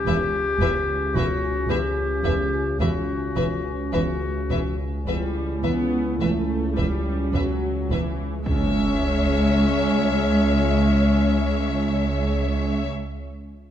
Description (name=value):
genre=cinematic, suspense film score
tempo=52-56 BPM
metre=4/4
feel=straight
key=C# minor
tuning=A4 = 445 Hz
part: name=clear clarinet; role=second line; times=0.0-12.8 s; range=C#4 to G4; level=-27 LUFS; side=left 2 dB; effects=none
part: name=organ-like drone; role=drone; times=0.0-12.8 s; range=C#2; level=-28 LUFS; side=equal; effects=ensemble chorus, built-in reverb
part: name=warm studio violin section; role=melody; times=0.1-12.8 s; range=E5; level=-32 LUFS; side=left 5 dB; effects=none
part: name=warm studio violin section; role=second line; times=0.1-12.8 s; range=B4 to C#5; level=-31 LUFS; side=left 3 dB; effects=none
part: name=warm studio viola section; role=accompaniment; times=0.1-12.8 s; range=E3 to B3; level=-27 LUFS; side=left 1 dB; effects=none
part: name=rich studio double bass section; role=bass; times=0.1-12.8 s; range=E1 to C#2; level=-28 LUFS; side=right 3 dB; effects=none
part: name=warm symphonic cello section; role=bass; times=0.1-12.8 s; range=C#2 to E2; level=-28 LUFS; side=right 2 dB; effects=none
part: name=impact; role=sound effects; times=8.5-12.9 s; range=none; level=-28 LUFS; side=equal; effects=none
room=wet recital hall reverb, RT60 1.8 s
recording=dark, warm production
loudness=-20 LUFS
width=side -10 dB against mid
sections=0.0-8.5 A section; 8.5-12.8 B section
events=impact 8.5-12.8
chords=0.0 Em; 8.5 C#m